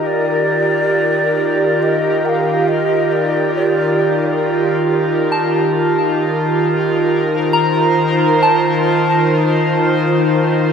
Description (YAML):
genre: ambient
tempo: free time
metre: none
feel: none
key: Eb lydian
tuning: A4 = 440 Hz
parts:
  - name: breathy mellow shakuhachi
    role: melody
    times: 0.0-4.8 s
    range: D5 to G5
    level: -20 LUFS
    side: left 1 dB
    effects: shimmer reverb, dub echo
  - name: airy breathy pad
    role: sustained chords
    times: 0.0-10.7 s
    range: Eb3 to C5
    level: -14 LUFS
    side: right 1 dB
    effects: chorus, shimmer reverb
  - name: soft synth bell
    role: arpeggios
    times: 5.3-10.7 s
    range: A5 to Bb5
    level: -19 LUFS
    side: equal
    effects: chorus, phaser, shimmer reverb, dub echo
  - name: bowed-like drone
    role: drone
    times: 6.8-10.7 s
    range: Eb3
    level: -23 LUFS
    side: left 3 dB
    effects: built-in reverb
room: wet spring reverb, RT60 2.7 s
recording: echo-heavy mix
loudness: -13 LUFS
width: side -6 dB against mid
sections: 0.0-10.7 A section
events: none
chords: 0.0 Ebmaj7; 5.3 Fsus4/Eb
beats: free time